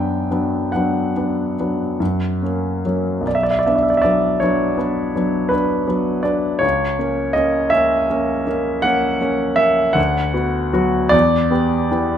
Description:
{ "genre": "classical, romantic nocturne for solo piano", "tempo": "46-56 BPM (dotted quarters)", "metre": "9/8", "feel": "rubato", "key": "B minor", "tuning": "A4 = 440 Hz", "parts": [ { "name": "clear grand piano", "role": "solo", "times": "0.0-12.2 s", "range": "B1 to G5", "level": "-16 LUFS", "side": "equal", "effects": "none" } ], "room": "light reverb", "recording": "none", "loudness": "-16 LUFS", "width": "side -9 dB against mid", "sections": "0.0-12.2 A section", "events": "none", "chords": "0.0 Bm/F#; 2.0 F#; 3.3 Bm; 6.6 A#dim/C#; 10.0 Bm/D; 11.1 Em", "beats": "0.73 2.00 | 3.26 4.43 5.53 | 6.63 7.74 8.86 | 9.97 11.13" }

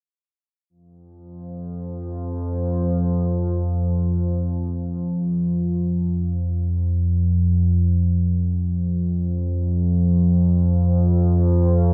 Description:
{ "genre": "ambient", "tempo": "free time", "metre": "none", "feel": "none", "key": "unclear", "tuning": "A4 = 440 Hz", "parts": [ { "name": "analog drone", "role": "drone", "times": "1.3-11.9 s", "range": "F2 to F3", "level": "-21 LUFS", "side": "equal", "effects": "chorus" } ], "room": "wet cathedral reverb, RT60 6.1 s", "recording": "worn, warbling old tape, cassette tape, warbly pitch drift", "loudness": "-21 LUFS", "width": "mono", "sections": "0.7-11.9 A section", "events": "none", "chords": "none", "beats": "free time" }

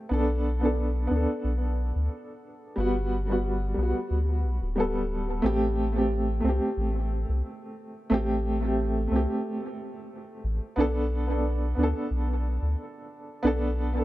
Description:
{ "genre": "trip hop", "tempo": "90 BPM", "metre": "4/4", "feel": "swing 55% on 16ths", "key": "A dorian", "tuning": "A4 = 438 Hz", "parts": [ { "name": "dark upright piano", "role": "accompaniment", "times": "0.0-14.0 s", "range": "G3 to A4", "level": "-28 LUFS", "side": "equal", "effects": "tremolo, tape echo" }, { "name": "soft dub sub bass", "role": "bass", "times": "0.1-14.0 s", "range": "D1 to D2", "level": "-27 LUFS", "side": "equal", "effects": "tube saturation" } ], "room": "light reverb, small room ambience", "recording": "echo-heavy mix", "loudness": "-25 LUFS", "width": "side -16 dB against mid", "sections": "0.0-5.4 A section; 5.4-14.0 B section", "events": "none", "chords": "0.1 Bm7; 2.8 Gmaj7; 5.4 Am7; 10.8 Bm7", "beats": "| 0.11 0.77 1.44 2.11 | 2.77 3.44 4.11 4.77 | 5.44 6.11 6.77 7.44 | 8.11 8.77 9.44 10.11 | 10.77 11.44 12.11 12.77 | 13.44" }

